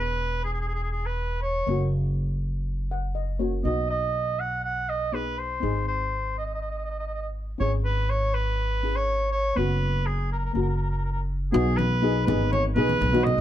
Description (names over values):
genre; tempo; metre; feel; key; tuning
calypso; 122 BPM; 4/4; straight; B major; A4 = 436 Hz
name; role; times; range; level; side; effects
clear oboe; melody; 0.0-13.4 s; G#4 to F#5; -28 LUFS; right 1 dB; plate reverb
steel pan; accompaniment; 0.0-13.4 s; A#3 to F#5; -28 LUFS; left 2 dB; none
upright bass; bass; 0.0-13.4 s; E1 to B1; -27 LUFS; equal; none
congas; percussion; 11.8-13.4 s; none; -30 LUFS; left 2 dB; none
room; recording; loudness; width
light reverb; dark, warm production; -24 LUFS; side -12 dB against mid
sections
0.0-11.5 A section; 11.5-13.4 B section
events
steel pan fill 2.7-3.7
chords
0.0 E; 1.7 F#; 3.7 B6; 5.6 G#; 7.6 C#m7/G#; 9.6 F#sus4; 10.6 F#; 11.5 B6